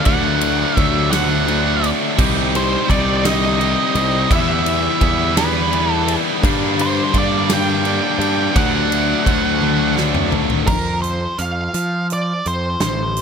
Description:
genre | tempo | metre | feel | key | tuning
quiet-loud alternative rock | 56 BPM (dotted quarters) | 6/8 | straight | unclear | A4 = 440 Hz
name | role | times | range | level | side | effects
octave-fuzz lead guitar | melody | 0.0-13.2 s | Bb4 to G5 | -21 LUFS | right 2 dB | distortion
high-gain distorted guitar | riff | 0.0-10.7 s | G2 to E4 | -25 LUFS | left 1 dB | distortion
thick fuzz guitar | riff | 0.0-10.7 s | G2 to E4 | -22 LUFS | left 16 dB | distortion
tight distorted guitar | riff | 0.0-10.7 s | G2 to E4 | -21 LUFS | right 15 dB | distortion
fuzz picked electric bass | bass | 0.1-13.2 s | A1 to F3 | -22 LUFS | equal | overdrive
big rock drum kit | drums | 0.1-13.2 s | crash cymbal, hi-hat, kick drum, ride cymbal, snare drum, toms | -21 LUFS | equal | none
room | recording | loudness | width
little or no reverb | none | -15 LUFS | side -6 dB against mid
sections
0.0-10.7 A section; 10.7-13.2 B section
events
drum fill 9.6-10.7; half time 10.7-13.2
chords
0.1 D; 2.2 Cm; 4.3 Em; 6.4 Gm; 8.5 D; 10.7 F5

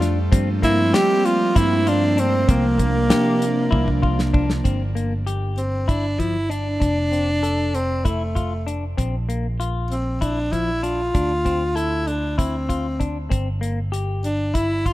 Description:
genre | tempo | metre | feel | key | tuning
progressive instrumental, band music in an uneven meter | 194 BPM (eighths) | 7/8 | straight | unclear | A4 = 440 Hz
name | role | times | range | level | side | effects
warm tenor saxophone | melody | 0.0-14.9 s | A3 to G4 | -22 LUFS | equal | ping-pong delay
airy breathy pad | accompaniment | 0.0-4.6 s | F3 to D4 | -25 LUFS | right 2 dB | chorus
clean electric guitar | arpeggios | 0.0-14.9 s | F3 to A4 | -28 LUFS | left 4 dB | none
picked electric bass | bass | 0.0-14.9 s | F1 to G3 | -24 LUFS | equal | none
damped 70s drum kit | drums | 0.0-14.9 s | hi-hat, kick drum, snare drum | -22 LUFS | equal | none
room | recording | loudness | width
small room ambience | rough home demo mix | -18 LUFS | side -16 dB against mid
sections
0.0-4.6 A section; 4.6-14.9 B section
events
drum fill 3.7-4.6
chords
0.3 Gm11; 2.5 C7sus4; 4.6 G5; 6.8 F; 9.0 Bb5; 11.1 Dm7; 13.3 N.C.

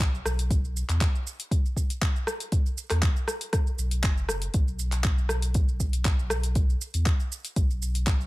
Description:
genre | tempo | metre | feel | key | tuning
afro house | 119 BPM | 4/4 | straight | unclear | A4 = 440 Hz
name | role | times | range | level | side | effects
warm sub bass | bass | 0.0-8.3 s | F#1 to E2 | -27 LUFS | equal | sidechain pumping
deep house drum kit | drums | 0.0-8.3 s | handclaps, hi-hat, rim click, shaker | -31 LUFS | equal | overdrive
electronic kick drum | drums | 0.0-8.2 s | none | -24 LUFS | equal | overdrive
room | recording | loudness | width
little or no reverb | none | -24 LUFS | side -19 dB against mid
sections
0.0-8.3 A section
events
none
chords
none

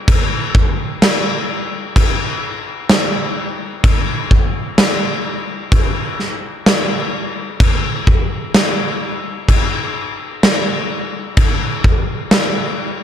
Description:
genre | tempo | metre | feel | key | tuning
rock | 64 BPM | 4/4 | straight | none | none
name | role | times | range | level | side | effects
big rock drum kit | drums | 0.1-12.5 s | crash cymbal, kick drum, snare drum | -14 LUFS | equal | none
room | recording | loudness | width
little or no reverb | dark, warm production | -14 LUFS | side -9 dB against mid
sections
0.0-13.0 A section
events
none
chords
none

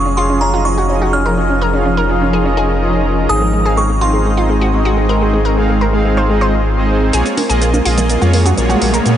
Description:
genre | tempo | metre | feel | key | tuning
progressive house | 125 BPM | 4/4 | straight | Bb minor | A4 = 442 Hz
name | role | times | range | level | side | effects
glassy synth bell | melody | 0.0-6.6 s | Bb5 to F6 | -20 LUFS | equal | chorus, tape echo
shimmering ambient pad | sustained chords | 0.0-9.2 s | F3 to Bb4 | -20 LUFS | equal | chorus, built-in reverb
saturated sub bass | bass | 0.0-9.2 s | F1 to Bb2 | -16 LUFS | equal | none
analog pluck | arpeggios | 0.1-9.1 s | Ab3 to C5 | -19 LUFS | right 1 dB | chorus, analog delay
soft supersaw | stabs | 0.2-9.2 s | Bb3 to F5 | -19 LUFS | right 2 dB | low-pass filter, analog delay
electronic hi-hat and shaker | drums | 7.1-9.2 s | none | -23 LUFS | equal | overdrive
riser | sound effects | 7.8-9.2 s | none | -21 LUFS | right 1 dB | none
congas | percussion | 7.4-8.6 s | none | -23 LUFS | right 3 dB | none
room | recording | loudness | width
moderate huge ambient reverb, RT60 7.6 s | dreamy mix soaked in reverb, nothing above 10.5 kHz | -12 LUFS | side -10 dB against mid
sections
0.0-7.1 A section; 7.1-9.2 B section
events
build-up 7.1-9.2; filter sweep on ambient pad 7.1-9.2; riser 7.8-9.2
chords
0.0 Dbadd9/F; 3.3 Ab; 7.1 Bbm7

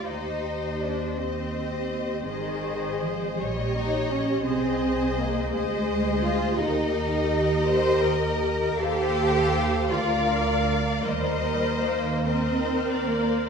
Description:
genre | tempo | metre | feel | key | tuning
classical, slow romantic movement for string orchestra | 43-59 BPM (dotted quarters) | 6/8 | rubato | unclear | A4 = 437 Hz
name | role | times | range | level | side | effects
warm symphonic violin section | melody | 0.0-13.5 s | D5 to F5 | -32 LUFS | left 4 dB | none
warm symphonic violin section | second line | 0.0-13.5 s | Bb4 to D5 | -31 LUFS | left 4 dB | none
warm symphonic viola section | accompaniment | 0.0-13.5 s | G4 to Bb4 | -29 LUFS | equal | none
rich symphonic cello section | bass | 0.0-13.5 s | Eb3 to C5 | -28 LUFS | right 1 dB | none
warm symphonic double bass section | bass | 0.0-13.5 s | Ab1 to Eb2 | -29 LUFS | right 2 dB | none
room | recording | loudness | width
wet recital hall reverb, RT60 1.7 s | heard from further back in the room | -23 LUFS | side -6 dB against mid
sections
0.0-13.5 A section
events
none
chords
0.1 Cm/Eb; 2.3 Ab; 3.4 Eb7/Bb; 4.5 Ab/C; 6.6 Eb; 8.8 F7/Eb; 9.9 Bb/D; 11.0 Cm7/Eb

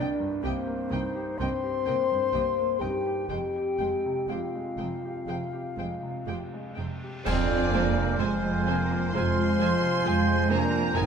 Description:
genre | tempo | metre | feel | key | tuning
cinematic, emotional film score for orchestra | 60-68 BPM | 4/4 | rubato | F dorian | A4 = 440 Hz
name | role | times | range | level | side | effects
rich symphonic violin section | melody | 0.0-11.0 s | G5 to Ab5 | -41 LUFS | left 1 dB | none
mellow clarinet | second line | 0.0-11.1 s | Bb3 to Eb5 | -36 LUFS | left 2 dB | none
mellow hollow silver concert flute | second line | 0.0-11.1 s | C5 to C6 | -37 LUFS | equal | none
warm symphonic violin section | second line | 0.0-11.1 s | C5 to C6 | -35 LUFS | right 2 dB | none
clear baby grand piano | accompaniment | 0.0-11.1 s | C2 to G4 | -35 LUFS | equal | none
warm symphonic viola section | accompaniment | 0.0-11.0 s | Ab3 to C5 | -38 LUFS | right 3 dB | none
mellow French horn section | sustained chords | 0.0-11.1 s | F3 to C5 | -30 LUFS | left 4 dB | none
rich symphonic double bass section | bass | 0.0-11.1 s | F1 to F2 | -31 LUFS | right 5 dB | none
warm symphonic cello section | bass | 0.0-11.1 s | F2 to C4 | -32 LUFS | right 1 dB | none
cymbal swell, clash cymbals and concert bass drum | percussion | 3.3-9.1 s | none | -36 LUFS | right 1 dB | none
warm French horn | melody | 7.3-11.1 s | C4 to C5 | -33 LUFS | left 1 dB | none
warm oboe | second line | 7.3-11.1 s | F5 to Ab5 | -35 LUFS | right 5 dB | none
room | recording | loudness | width
moderate scoring stage reverb, RT60 2.0 s | dark, warm production | -25 LUFS | side -6 dB against mid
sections
0.0-7.3 A section; 7.3-11.1 B section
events
band accent 7.3-8.2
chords
0.0 Cm7; 3.3 Fmadd9; 7.3 Fm

